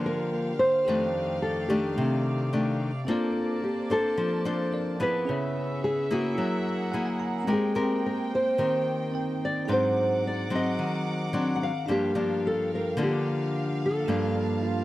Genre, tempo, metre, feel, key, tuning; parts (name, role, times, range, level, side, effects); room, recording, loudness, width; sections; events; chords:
bossa nova; 109 BPM; 4/4; straight; G minor; A4 = 440 Hz
nylon-string guitar; melody; 0.0-14.8 s; F4 to Gb5; -28 LUFS; equal; tape echo
bell-like tine electric piano; accompaniment; 0.0-14.8 s; Bb3 to A#5; -35 LUFS; right 4 dB; phaser
nylon-string guitar; accompaniment; 0.0-14.8 s; F2 to C5; -28 LUFS; left 2 dB
warm chamber string section; sustained chords; 0.0-14.8 s; A3 to D6; -36 LUFS; right 2 dB
mellow trombone; second line; 14.3-14.8 s; D4 to F4; -35 LUFS; right 8 dB
moderate studio reverb, RT60 0.5 s; dry, close 1970s-style studio recording; -24 LUFS; side -16 dB against mid
0.0-14.8 A section
tine electric piano fill 6.7-7.5
0.0 Gm7; 0.9 F13; 3.1 Bbmaj9; 5.3 C#m7; 6.4 F#9; 7.5 Abmaj9; 9.7 Ab7#11; 11.9 Gm7